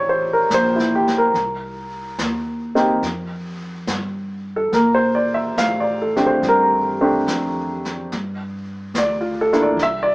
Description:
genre	jazz ballad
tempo	71 BPM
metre	4/4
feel	swing 68% on 8ths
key	unclear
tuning	A4 = 440 Hz
part	warm baby grand piano	accompaniment	0.0-10.1 s	A3 to F5	-17 LUFS	equal	none
part	upright bass	bass	0.0-10.1 s	A1 to Bb2	-25 LUFS	equal	none
part	jazz brush drum kit	drums	0.5-10.1 s	brushed snare drum, hi-hat, snare drum	-30 LUFS	equal	none
room	moderate studio reverb, RT60 0.6 s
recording	band playing live in one room, small speaker sound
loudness	-17 LUFS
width	side -24 dB against mid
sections	0.0-10.1 A section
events	none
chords	0.0 Am7; 1.3 Cm7; 3.0 Fsus2; 4.7 Bbmaj13; 8.1 Gm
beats	0.51 | 1.34 2.18 3.02 3.87 | 4.73 5.58 6.43 7.27 | 8.11 8.95 9.78

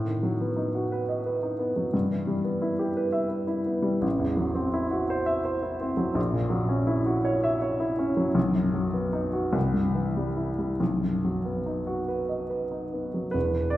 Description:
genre	classical, romantic nocturne for solo piano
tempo	46-60 BPM (dotted quarters)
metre	6/8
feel	rubato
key	unclear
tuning	A4 = 439 Hz
part	warm baby grand piano	solo	0.0-13.8 s	E1 to E5	-24 LUFS	equal	none
room	wet recital hall reverb, RT60 1.8 s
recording	recorded in a church or concert hall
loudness	-24 LUFS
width	side -14 dB against mid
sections	0.0-13.4 A section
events	none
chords	0.0 B7/A; 1.9 Em/G; 4.1 F#m7b5/A; 6.2 F#7/A#; 8.4 B; 9.6 C; 10.8 B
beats	0.91 | 1.94 2.97 | 4.05 5.12 | 6.18 7.27 | 8.36 9.55 | 10.81 12.08 | 13.35

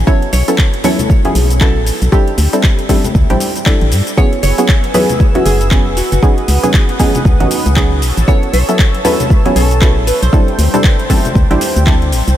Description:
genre	deep house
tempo	117 BPM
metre	4/4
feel	swing 60% on 16ths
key	unclear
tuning	A4 = 440 Hz
part	organ-like FM bass	bass	0.0-12.3 s	E1 to G2	-13 LUFS	equal	none
part	archtop guitar, miked and amplified	melody	0.1-10.7 s	F#4 to C#5	-21 LUFS	right 1 dB	analog chorus, diffuse ambient delay
part	filtered dub chord stab	stabs	0.1-12.1 s	F#3 to A4	-16 LUFS	equal	chorus, sidechain pumping, ping-pong delay
part	deep house drum kit	drums	0.1-12.4 s	handclaps, hi-hat, shaker	-20 LUFS	equal	overdrive, studio reverb
part	electronic kick drum	drums	0.1-12.0 s	none	-11 LUFS	equal	overdrive, studio reverb
part	congas	percussion	0.8-11.6 s	none	-23 LUFS	left 2 dB	none
part	warm analog pad	sustained chords	4.2-12.4 s	B4 to E6	-22 LUFS	right 1 dB	chorus, vintage 12-bit sampler grit, sidechain pumping
room	light reverb, digital ambience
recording	none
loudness	-9 LUFS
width	side -12 dB against mid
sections	0.0-12.4 A section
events	none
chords	0.0 B9sus4; 2.1 D9sus4; 4.2 F#9sus4; 6.2 C#9sus4; 8.0 B9sus4; 10.3 D9sus4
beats	| 0.07 0.58 1.10 1.61 | 2.12 2.64 3.15 3.66 | 4.17 4.69 5.20 5.71 | 6.23 6.74 7.25 7.76 | 8.28 8.79 9.30 9.82 | 10.33 10.84 11.35 11.87

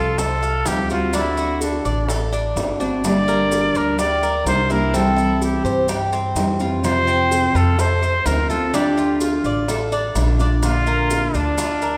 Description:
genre	latin, Cuban son and guajira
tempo	126 BPM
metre	4/4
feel	straight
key	F major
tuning	A4 = 440 Hz
part	breathy trumpet	melody	0.0-12.0 s	D4 to D5	-24 LUFS	equal	none
part	nylon-string guitar	accompaniment	0.0-11.6 s	C3 to G4	-25 LUFS	equal	none
part	Cuban tres	arpeggios	0.0-12.0 s	Bb3 to F5	-27 LUFS	equal	none
part	upright bass	bass	0.0-12.0 s	G1 to G2	-25 LUFS	equal	none
part	bongos	percussion	0.2-12.0 s	none	-31 LUFS	equal	none
part	maracas	percussion	0.2-12.0 s	none	-36 LUFS	equal	none
room	wet recital hall reverb, RT60 1.8 s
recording	recorded in a church or concert hall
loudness	-19 LUFS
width	mono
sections	0.0-12.0 A section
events	none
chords	0.0 Fadd9; 1.1 D7; 3.0 Gm; 4.9 C; 6.8 F; 8.7 Dm; 10.6 Bb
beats	0.19 0.67 | 1.14 1.62 2.09 2.57 | 3.04 3.52 3.99 4.47 | 4.94 5.42 5.89 6.36 | 6.84 7.31 7.79 8.26 | 8.73 9.21 9.68 10.16 | 10.63 11.11 11.58

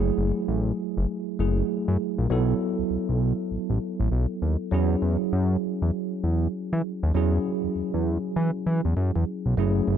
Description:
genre	R&B, new jack swing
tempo	99 BPM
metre	4/4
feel	swing 62% on 16ths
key	unclear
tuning	A4 = 441 Hz
part	bell-like tine electric piano	accompaniment	0.0-10.0 s	F#3 to A4	-26 LUFS	right 2 dB	medium stereo tremolo
part	fat analog bass	bass	0.0-10.0 s	F#1 to E3	-23 LUFS	left 1 dB	none
room	light reverb, digital ambience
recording	dark, warm production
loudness	-23 LUFS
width	side -9 dB against mid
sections	0.0-9.6 A section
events	none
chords	0.0 F#m9; 2.3 B7sus4; 4.7 E69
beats	0.48 1.09 1.69 | 2.30 2.90 3.51 4.12 | 4.72 5.33 5.93 6.54 | 7.15 7.75 8.36 8.96 | 9.57

